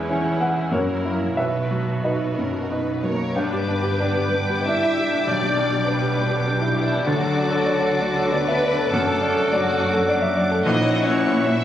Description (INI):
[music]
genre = classical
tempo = 84-107 BPM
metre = 3/4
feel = rubato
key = B major, G major from 3.4 s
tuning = A4 = 441 Hz
[part]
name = clear concert grand piano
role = melody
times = 0.0-11.6 s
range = A#1 to G#5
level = -23 LUFS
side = left 1 dB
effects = none
[part]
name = dark symphonic violin section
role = second line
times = 0.0-11.6 s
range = E4 to E5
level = -28 LUFS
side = equal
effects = none
[part]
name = clear symphonic viola section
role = accompaniment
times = 0.0-11.6 s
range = F#3 to A4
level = -32 LUFS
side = equal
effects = none
[part]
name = warm symphonic cello section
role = bass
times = 0.0-11.6 s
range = E2 to D3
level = -27 LUFS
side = right 1 dB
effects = none
[part]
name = mellow hollow large flute ensemble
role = second line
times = 3.0-11.6 s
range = E4 to E5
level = -31 LUFS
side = equal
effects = none
[part]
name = mellow French horn section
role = sustained chords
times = 3.0-11.6 s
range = E3 to E4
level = -28 LUFS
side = left 3 dB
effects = none
[part]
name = warm symphonic violin section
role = melody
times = 3.3-11.6 s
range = C#6 to D6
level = -31 LUFS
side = left 2 dB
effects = none
[part]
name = clear oboe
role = second line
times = 3.4-11.6 s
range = F#5 to A5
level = -28 LUFS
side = right 1 dB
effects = none
[part]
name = mellow clarinet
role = second line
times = 3.4-11.6 s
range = C#4 to D4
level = -32 LUFS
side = left 4 dB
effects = none
[part]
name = mellow bassoon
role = accompaniment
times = 3.4-11.6 s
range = E3 to G3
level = -31 LUFS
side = equal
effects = none
[part]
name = dark symphonic double bass section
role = bass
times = 3.4-11.6 s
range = F#1 to D2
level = -33 LUFS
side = right 2 dB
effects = none
[part]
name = timpani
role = percussion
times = 5.3-6.1 s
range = B2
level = -33 LUFS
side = right 2 dB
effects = none
[sound]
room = moderate scoring stage reverb, RT60 1.8 s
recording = recorded on a phone in the room, club reverb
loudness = -19 LUFS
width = side -11 dB against mid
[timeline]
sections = 0.0-3.4 A section; 3.4-11.6 B section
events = none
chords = 0.0 C#m/E; 0.7 F#7; 1.4 B; 3.4 G; 5.3 G/B; 7.1 D; 8.9 D/F#; 10.7 F#7/A#